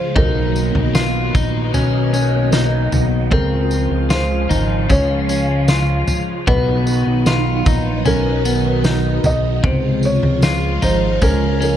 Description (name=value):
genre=dream pop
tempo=76 BPM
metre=4/4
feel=straight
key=unclear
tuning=A4 = 440 Hz
part: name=felt-muted upright piano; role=melody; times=0.0-11.8 s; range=A#4 to D#5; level=-23 LUFS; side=equal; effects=tape echo
part: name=phased string machine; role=sustained chords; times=0.0-11.8 s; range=Db3 to F4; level=-22 LUFS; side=right 1 dB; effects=ensemble chorus, phaser
part: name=clean electric guitar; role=arpeggios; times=0.0-11.8 s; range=C3 to F4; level=-22 LUFS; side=left 4 dB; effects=wide subtle chorus, tape echo
part: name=fat analog bass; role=bass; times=0.2-11.8 s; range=Ab1 to Db2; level=-19 LUFS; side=equal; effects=none
part: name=loose indie drum kit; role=drums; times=0.2-11.8 s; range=kick drum, snare drum, tambourine, toms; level=-19 LUFS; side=equal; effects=none
room=light reverb, studio reverb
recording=dark, warm production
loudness=-14 LUFS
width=side -10 dB against mid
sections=0.0-3.3 A section; 3.3-11.8 B section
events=none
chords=0.2 Bmaj7; 3.3 Dbmaj7; 6.5 Bmaj7; 9.6 Dbmaj7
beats=| 0.16 0.95 1.74 2.53 | 3.32 4.11 4.90 5.69 | 6.48 7.27 8.06 8.85 | 9.64 10.43 11.21